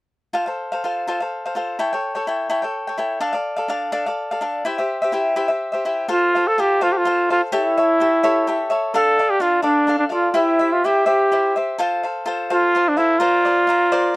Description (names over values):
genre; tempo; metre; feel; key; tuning
mexican folk, mariachi; 84 BPM (dotted quarters); 6/8; straight; F major; A4 = 441 Hz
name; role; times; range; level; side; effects
cavaquinho; accompaniment; 0.3-14.2 s; D4 to G5; -20 LUFS; left 1 dB; none
warm trumpet; melody; 6.1-14.2 s; D4 to A4; -16 LUFS; right 1 dB; none
room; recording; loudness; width
moderate booth ambience, RT60 0.2 s; none; -17 LUFS; side -21 dB against mid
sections
0.3-6.1 A section; 6.1-14.2 B section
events
none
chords
0.3 F; 1.8 A7; 3.2 Dm; 4.7 C; 6.1 F; 7.5 A7; 8.9 Dm; 10.4 C; 11.8 F; 13.2 Bbadd9/F